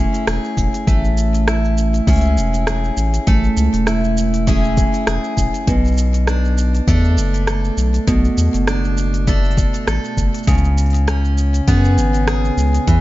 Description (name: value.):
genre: folktronica.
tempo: 100 BPM.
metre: 4/4.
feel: swing 56% on 16ths.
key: A major.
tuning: A4 = 441 Hz.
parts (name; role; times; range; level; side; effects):
picked steel-string acoustic guitar; arpeggios; 0.0-13.0 s; B2 to A4; -19 LUFS; right 1 dB; ping-pong delay.
round analog bass; bass; 0.0-13.0 s; E1 to F#2; -16 LUFS; equal; none.
organic electronic drum kit; drums; 0.1-13.0 s; hi-hat, rim click, shaker; -25 LUFS; right 1 dB; none.
electronic kick drum; drums; 0.6-13.0 s; none; -18 LUFS; equal; none.
room: digital ambience.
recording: dark, warm production, nothing above 7.5 kHz.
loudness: -14 LUFS.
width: side -16 dB against mid.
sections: 0.0-13.0 A section.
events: none.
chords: 0.0 Amaj7; 5.7 Bm7; 10.5 C#5.